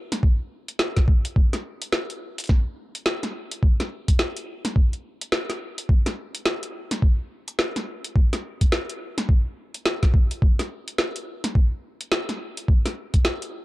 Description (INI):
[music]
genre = glitch hop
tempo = 106 BPM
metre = 4/4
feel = swing 61% on 16ths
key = none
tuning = none
[part]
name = drum and bass drum kit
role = drums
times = 0.1-13.5 s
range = hi-hat, snare drum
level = -26 LUFS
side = equal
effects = none
[part]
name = electronic kick drum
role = drums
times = 0.2-13.2 s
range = none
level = -18 LUFS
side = equal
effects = none
[sound]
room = little or no reverb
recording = dark, warm production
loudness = -21 LUFS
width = side -18 dB against mid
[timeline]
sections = 0.0-13.6 A section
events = break 5.3-5.9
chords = none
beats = 0.23 0.80 | 1.36 1.93 2.50 3.06 | 3.63 4.19 4.76 5.33 | 5.89 6.46 7.02 7.59 | 8.15 8.72 9.29 9.85 | 10.42 10.99 11.55 12.12 | 12.68 13.25